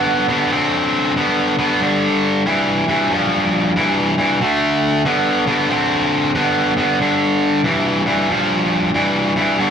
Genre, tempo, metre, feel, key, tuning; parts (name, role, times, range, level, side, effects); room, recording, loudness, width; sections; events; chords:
blues; 93 BPM; 4/4; swing 64% on 8ths; G mixolydian; A4 = 440 Hz
overdriven electric guitar; solo; 0.0-9.7 s; G2 to C4; -14 LUFS; equal
moderate stone room reverb, RT60 1.2 s; rough rehearsal-room recording, tube saturation; -14 LUFS; side -7 dB against mid
0.0-7.0 A section; 7.0-9.7 B section
0.0 D5; 1.8 G5; 4.4 D5; 7.0 G5